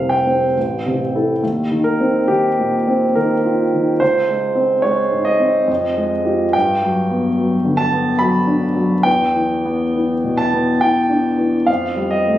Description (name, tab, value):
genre	classical, impressionist solo piano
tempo	70 BPM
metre	3/4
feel	uneven beats, rubato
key	unclear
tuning	A4 = 439 Hz
part	warm concert grand piano	solo	0.0-12.4 s	F1 to B5	-14 LUFS	equal	none
room	moderate recital hall reverb, RT60 1.6 s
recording	recorded on a phone in the room, studio reverb, compression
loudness	-14 LUFS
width	side -12 dB against mid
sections	0.0-12.4 A section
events	none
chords	0.0 F5; 0.6 Am7; 1.4 Eb69; 4.0 C#5; 5.7 Fm9; 6.5 Gmaj7; 9.1 Em7; 11.7 F9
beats	0.56 | 1.42 2.29 3.16 | 4.01 4.84 5.69 | 6.54 7.38 8.21 | 9.06 9.96 10.82 | 11.68